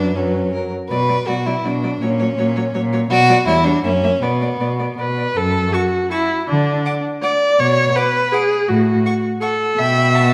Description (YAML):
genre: quick classical-period movement for string quartet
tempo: 163 BPM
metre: 3/4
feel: straight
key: B minor, F# minor from 5.4 s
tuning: A4 = 440 Hz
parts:
  - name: rich violin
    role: melody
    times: 0.0-10.3 s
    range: A#4 to D6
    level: -31 LUFS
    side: equal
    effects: none
  - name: rich violin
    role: second line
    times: 0.0-10.3 s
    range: B3 to A5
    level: -22 LUFS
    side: equal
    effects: none
  - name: rich viola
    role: accompaniment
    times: 0.0-10.3 s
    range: F#3 to E5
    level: -21 LUFS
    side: equal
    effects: none
  - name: rich cello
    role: bass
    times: 0.0-10.3 s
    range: E2 to D3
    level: -22 LUFS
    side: equal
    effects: none
room: moderate scoring stage reverb, RT60 1.5 s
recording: none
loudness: -17 LUFS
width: mono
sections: 0.0-5.4 A section; 5.4-10.3 B section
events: none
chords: 0.0 F#sus4; 0.9 Bm; 2.0 F#/A#; 3.1 B5; 3.5 C#dim/E; 3.8 F#; 4.2 Bm; 5.4 F#m; 6.5 N.C.; 8.7 F#m/A; 9.8 G/B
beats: 0.16 0.53 | 0.91 1.28 1.65 | 2.02 2.38 2.75 | 3.11 3.47 3.84 | 4.22 4.60 4.98 | 5.36 5.74 6.11 | 6.49 6.85 7.22 | 7.59 7.96 8.32 | 8.69 9.05 9.41 | 9.78 10.15